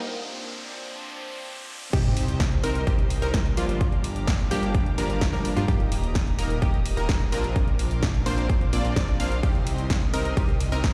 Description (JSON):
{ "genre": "EDM, festival progressive house", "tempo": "128 BPM", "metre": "4/4", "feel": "straight", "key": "C minor", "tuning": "A4 = 441 Hz", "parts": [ { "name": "bright chamber string section", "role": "sustained chords", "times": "0.0-10.9 s", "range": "Bb2 to Eb6", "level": "-41 LUFS", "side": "equal", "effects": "sidechain pumping" }, { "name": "supersaw stab", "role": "riff", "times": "0.0-10.9 s", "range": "F3 to F5", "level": "-34 LUFS", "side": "equal", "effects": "sidechain pumping, dub echo" }, { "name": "riser and sub drop", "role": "sound effects", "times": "0.0-3.8 s", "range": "none", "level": "-35 LUFS", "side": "equal", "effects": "none" }, { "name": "unison pluck", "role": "arpeggios", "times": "1.9-10.9 s", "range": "F4 to F5", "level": "-37 LUFS", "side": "equal", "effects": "sidechain pumping, dub echo" }, { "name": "detuned saw bass", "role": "bass", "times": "1.9-10.9 s", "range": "Eb1 to G2", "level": "-30 LUFS", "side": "equal", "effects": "chorus, sidechain pumping" }, { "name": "big-room dance drum kit", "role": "drums", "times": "1.9-10.9 s", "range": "crash cymbal, hi-hat, ride cymbal, snare drum", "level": "-36 LUFS", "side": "equal", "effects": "studio reverb" }, { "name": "electronic kick drum", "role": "drums", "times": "1.9-10.9 s", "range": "none", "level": "-26 LUFS", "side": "equal", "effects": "high-pass filter on kick, studio reverb" } ], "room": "light reverb, digital ambience", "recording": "played on a big sound system in a bare room, large studio reverb, high-pass filter", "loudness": "-24 LUFS", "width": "mono", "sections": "0.0-1.9 A section; 1.9-10.9 B section", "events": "build-up 0.0-1.9; riser 0.0-1.9; break 0.1-1.9; drop 1.9-10.9; impact 1.9-3.8", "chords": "0.1 Bbadd9; 1.9 Cm; 3.8 Gm7; 5.7 Eb; 7.6 Bbadd9; 9.4 Cm" }